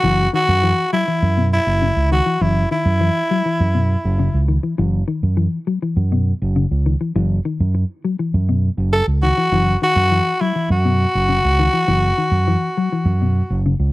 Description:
afrobeat; 101 BPM; 4/4; straight; A4 = 441 Hz
growling tenor saxophone; melody; 0.0-4.5, 8.9-13.6 s; E4 to A4; -18 LUFS; equal
mellow electric guitar; arpeggios; 0.0-13.9 s; B2 to F#3; -21 LUFS; left 4 dB
fingered electric bass; bass; 0.0-13.9 s; F#1 to F#2; -17 LUFS; right 1 dB
small room ambience; dry, close 1970s-style studio recording; -15 LUFS; side -18 dB against mid
0.0-13.9 A section
0.0 F#5

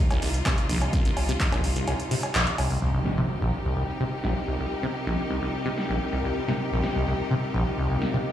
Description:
acid house; 127 BPM; 4/4; straight; C minor; A4 = 440 Hz
bright symphonic string section; sustained chords; 0.0-8.3 s; C3 to G4; -31 LUFS; left 1 dB; sidechain pumping
liquid acid bass; riff; 0.1-8.2 s; Bb1 to C3; -27 LUFS; equal; phaser, digital delay
electro analog drum machine; drums; 0.1-8.1 s; cowbell, handclaps, hi-hat, snare drum; -30 LUFS; equal; overdrive, low-pass filter on hats, low-pass filter on perc, low-pass filter on snare, low-pass filter on room
warm sub bass; bass; 0.2-1.8 s; C2; -27 LUFS; equal; sidechain pumping
electronic kick drum; drums; 0.5-1.5 s; -25 LUFS; equal; overdrive
impact; sound effects; 2.8-4.7 s; -32 LUFS; equal
ethereal airy pad; texture; 3.9-8.3 s; C4 to G5; -33 LUFS; equal; ensemble chorus, built-in reverb, sidechain pumping
wet studio reverb, RT60 0.6 s; played on a big sound system in a bare room, stone room reverb; -24 LUFS; side -11 dB against mid
0.0-2.8 A section; 2.8-8.3 B section
band accent 2.3; impact 2.8-4.7
0.0 Cm

